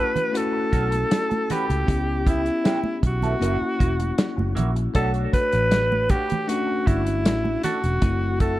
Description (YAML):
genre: lush 1970s-style soul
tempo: 78 BPM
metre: 4/4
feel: straight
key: unclear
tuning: A4 = 442 Hz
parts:
  - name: breathy alto saxophone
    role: melody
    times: 0.0-8.6 s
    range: E4 to B4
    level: -24 LUFS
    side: equal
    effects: tape echo
  - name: bell-like tine electric piano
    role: accompaniment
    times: 0.0-8.6 s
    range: A3 to C#5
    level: -28 LUFS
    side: left 4 dB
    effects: none
  - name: electric guitar through a small old amp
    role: riff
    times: 0.0-8.5 s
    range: A3 to B4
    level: -32 LUFS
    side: right 4 dB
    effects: wah
  - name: warm soul drum kit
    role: drums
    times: 0.2-8.6 s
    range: hi-hat, kick drum, snare drum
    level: -23 LUFS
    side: equal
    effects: none
  - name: congas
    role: percussion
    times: 0.2-8.2 s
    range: none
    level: -31 LUFS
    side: right 4 dB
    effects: none
  - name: vintage muted fingered electric bass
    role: bass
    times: 0.7-8.6 s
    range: E1 to C#2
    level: -25 LUFS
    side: equal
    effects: none
room: light reverb, small room ambience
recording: dark, warm production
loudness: -20 LUFS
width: side -15 dB against mid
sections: 0.0-8.6 A section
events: none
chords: 0.0 Dmaj7 (rootless); 1.9 C#m7b5; 3.4 F#7; 5.0 Bm7; 8.0 F#m7b5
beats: 0.34 1.11 | 1.88 2.65 3.42 4.18 | 4.95 5.72 6.49 7.26 | 8.02